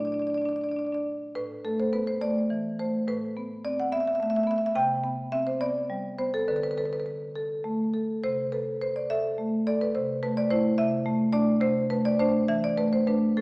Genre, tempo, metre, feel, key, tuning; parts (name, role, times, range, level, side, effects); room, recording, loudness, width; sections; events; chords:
classical, contemporary piece for solo marimba; 70 BPM (dotted quarters); 6/8; rubato; A minor; A4 = 440 Hz
marimba with medium mallets; solo; 0.0-13.4 s; A2 to G5; -24 LUFS; equal
wet recital hall reverb, RT60 1.3 s; heard from further back in the room, small speaker sound; -24 LUFS; side -28 dB against mid
0.0-1.4 A section; 1.4-13.4 B section
0.0 Bbmaj7; 1.4 Asus2; 3.1 Amadd9; 4.8 Csus2; 6.5 D5; 8.2 C6; 12.5 E7sus4